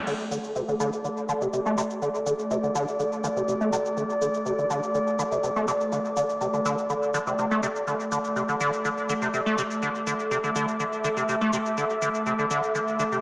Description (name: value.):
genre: acid house.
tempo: 123 BPM.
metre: 4/4.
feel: straight.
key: unclear.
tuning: A4 = 436 Hz.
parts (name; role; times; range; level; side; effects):
airy breathy pad; texture; 0.0-13.2 s; A3 to D6; -27 LUFS; equal; chorus.
liquid acid bass; riff; 0.1-13.2 s; C3 to A3; -26 LUFS; equal; overdrive, wide subtle chorus, diffuse ambient delay.
electronic crash cymbal and shaker; drums; 0.1-13.2 s; none; -38 LUFS; equal; none.
room: wet plate reverb, RT60 1.5 s.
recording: dreamy mix soaked in reverb, small speaker sound.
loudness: -24 LUFS.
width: side -26 dB against mid.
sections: 0.1-13.2 A section.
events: none.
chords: 0.1 D5.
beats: | 0.07 0.56 1.04 1.53 | 2.02 2.51 3.00 3.48 | 3.97 4.46 4.95 5.43 | 5.92 6.41 6.90 7.38 | 7.87 8.36 8.85 9.34 | 9.82 10.31 10.80 11.29 | 11.78 12.26 12.75.